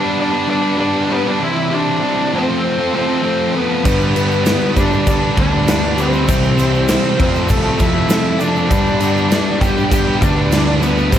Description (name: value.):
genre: classic rock.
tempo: 99 BPM.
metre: 4/4.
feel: straight.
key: unclear.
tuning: A4 = 438 Hz.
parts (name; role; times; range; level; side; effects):
octave-fuzz lead guitar; melody; 0.0-11.2 s; A3 to G4; -19 LUFS; left 1 dB; distortion.
tonewheel organ; sustained chords; 0.0-11.2 s; F3 to B4; -29 LUFS; equal; none.
sludgy distorted guitar; riff; 0.0-11.2 s; C3 to C5; -19 LUFS; equal; overdrive.
crunchy overdriven guitar; riff; 3.8-11.2 s; F2 to C4; -22 LUFS; equal; none.
growling picked electric bass; bass; 3.9-11.2 s; C2 to G2; -19 LUFS; equal; overdrive.
big rock drum kit; drums; 3.9-11.2 s; crash cymbal, kick drum, snare drum; -18 LUFS; equal; none.
egg shaker; percussion; 3.9-11.2 s; none; -35 LUFS; right 3 dB; none.
room: light reverb.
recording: none.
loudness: -13 LUFS.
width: side -10 dB against mid.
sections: 0.0-11.2 A section.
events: none.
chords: 0.0 G; 1.4 C; 2.3 F; 3.9 G; 6.3 C; 7.2 F; 8.7 G.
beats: 0.21 0.81 | 1.42 2.03 2.64 3.25 | 3.85 4.46 5.07 5.68 | 6.28 6.89 7.50 8.10 | 8.71 9.31 9.92 10.52 | 11.13.